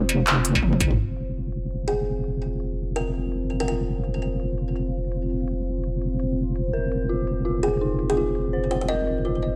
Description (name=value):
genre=half-time drum and bass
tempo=167 BPM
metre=4/4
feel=swing 57% on 16ths, half-time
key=unclear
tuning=A4 = 439 Hz
part: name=dark analog pad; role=sustained chords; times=0.0-9.6 s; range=C4 to C5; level=-33 LUFS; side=equal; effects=chorus, phaser, sidechain pumping
part: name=deep soft wobble bass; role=bass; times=0.0-9.6 s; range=F1 to Gb1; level=-28 LUFS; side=equal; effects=chorus, tube saturation
part: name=industrial drum kit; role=drums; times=0.1-9.5 s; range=handclaps, hi-hat, shaker, struck metal, toms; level=-25 LUFS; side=equal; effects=low-pass filter on snare, low-pass filter on hats, low-pass filter on perc, low-pass filter on toms, low-pass filter on room
part: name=electronic kick drum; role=drums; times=0.6-0.9 s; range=none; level=-27 LUFS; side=equal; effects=none
part: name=kalimba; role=melody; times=1.9-3.7, 7.6-9.4 s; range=Ab4 to Eb5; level=-30 LUFS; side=equal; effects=vintage 12-bit sampler grit, digital delay
part: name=dark detuned synth bell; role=arpeggios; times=6.7-9.6 s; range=Eb4 to C5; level=-31 LUFS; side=equal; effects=chorus, digital delay
room=light reverb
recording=none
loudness=-25 LUFS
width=mono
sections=1.0-9.6 A section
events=drum fill 0.6-1.0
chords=0.0 F5